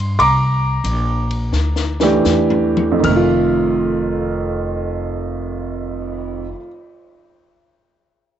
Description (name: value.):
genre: jazz piano trio.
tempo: 74-96 BPM.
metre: 4/4.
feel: swing 69% on 8ths.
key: F mixolydian.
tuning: A4 = 440 Hz.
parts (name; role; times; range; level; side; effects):
warm baby grand piano; melody; 0.0-6.7 s; F2 to F6; -17 LUFS; right 2 dB; none.
upright bass; bass; 0.0-6.5 s; F1 to G2; -21 LUFS; equal; transformer saturation.
compact cocktail drum kit; drums; 0.0-6.1 s; crash cymbal, cymbal swell, hi-hat, kick drum, ride cymbal, snare drum, toms; -26 LUFS; left 6 dB; none.
room: moderate spring reverb, RT60 2.1 s.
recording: 1960s-style stereo, nothing above 8.0 kHz.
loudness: -15 LUFS.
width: side -10 dB against mid.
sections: 0.0-3.0 A section; 3.0-6.3 B section.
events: slowing down 0.0-3.0; drum fill 1.5-3.0.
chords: 0.2 C9; 3.0 F7.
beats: | 0.20 0.84 1.52 2.25 | 3.04 3.85 4.66 5.48.